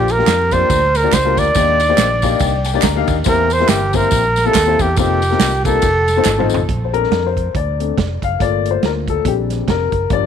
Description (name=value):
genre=uptempo gospel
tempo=140 BPM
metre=4/4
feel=swing 58% on 8ths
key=Bb major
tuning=A4 = 438 Hz
part: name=breathy flugelhorn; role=melody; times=0.0-6.5 s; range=G4 to D5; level=-16 LUFS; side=right 2 dB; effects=tape echo
part: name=dark upright piano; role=accompaniment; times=0.0-10.3 s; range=Bb2 to Bb5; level=-19 LUFS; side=left 13 dB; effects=none
part: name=fingered electric bass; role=bass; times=0.0-10.3 s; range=F1 to F2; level=-20 LUFS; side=right 1 dB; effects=none
part: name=swinging big-band drum kit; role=drums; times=0.1-10.2 s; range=hi-hat, kick drum, ride cymbal, snare drum, toms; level=-21 LUFS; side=right 4 dB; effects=none
part: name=tambourine and handclaps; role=percussion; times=0.1-6.6 s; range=none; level=-25 LUFS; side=equal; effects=none
room=light reverb, studio ambience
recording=1960s-style stereo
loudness=-13 LUFS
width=side -8 dB against mid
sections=0.0-6.7 A section; 6.7-10.3 B section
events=upright piano fill 2.0-3.3; drum fill 6.3-6.7; upright piano solo 6.7-10.3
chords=0.0 Bb6; 1.6 Ebmaj7; 3.3 C7; 5.0 F7sus4; 5.8 F7; 6.7 Bbmaj7; 8.4 Gm7; 9.3 Bb13